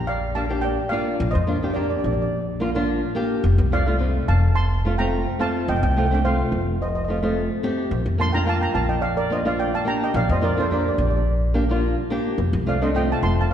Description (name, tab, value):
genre	calypso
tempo	107 BPM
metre	4/4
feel	straight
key	Bb major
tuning	A4 = 438 Hz
part	steel pan	melody	0.0-13.5 s	A4 to C6	-25 LUFS	right 2 dB	none
part	flamenco guitar	accompaniment	0.0-13.5 s	A3 to G4	-24 LUFS	equal	none
part	upright bass	bass	0.0-13.5 s	F1 to F2	-22 LUFS	equal	none
room	wet concert hall reverb, RT60 1.9 s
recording	recorded in a church or concert hall, nothing above 11.0 kHz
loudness	-19 LUFS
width	side -9 dB against mid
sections	0.0-13.5 A section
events	none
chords	0.0 Bb; 3.4 F; 7.9 Bb; 12.4 F7